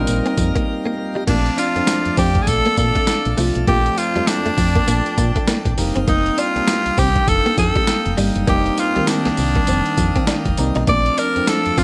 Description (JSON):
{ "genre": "R&B, new jack swing", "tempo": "100 BPM", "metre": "4/4", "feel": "swing 60% on 16ths", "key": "Bb major", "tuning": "A4 = 440 Hz", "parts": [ { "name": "raspy tenor saxophone", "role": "melody", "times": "0.0-11.8 s", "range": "D4 to D5", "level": "-23 LUFS", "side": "equal", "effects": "digital delay" }, { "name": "tine electric piano", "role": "accompaniment", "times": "0.0-11.8 s", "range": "Eb3 to F4", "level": "-25 LUFS", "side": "equal", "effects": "phaser" }, { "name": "pipe organ, plenum", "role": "sustained chords", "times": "0.0-11.8 s", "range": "A3 to Eb6", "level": "-32 LUFS", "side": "equal", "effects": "none" }, { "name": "direct-recorded clean electric guitar", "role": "riff", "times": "0.0-11.8 s", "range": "G3 to Eb4", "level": "-28 LUFS", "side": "equal", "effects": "ensemble chorus" }, { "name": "solid FM bass", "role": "bass", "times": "0.0-11.8 s", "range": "F1 to Bb2", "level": "-23 LUFS", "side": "equal", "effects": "none" }, { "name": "boom bap sampler-style drum kit", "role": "drums", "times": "0.1-11.8 s", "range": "crash cymbal, hi-hat, kick drum, snare drum, tambourine", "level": "-23 LUFS", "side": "equal", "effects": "overdrive, gated reverb" } ], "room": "moderate plate reverb, RT60 1.5 s, digital ambience", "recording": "bright 1980s-style digital production", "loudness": "-18 LUFS", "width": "mono", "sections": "0.0-1.3 A section; 1.3-11.8 B section", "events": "break 0.7-1.3", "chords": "0.0 F9sus4; 1.3 Bbmaj7; 5.8 F9sus4; 10.9 Bbmaj7" }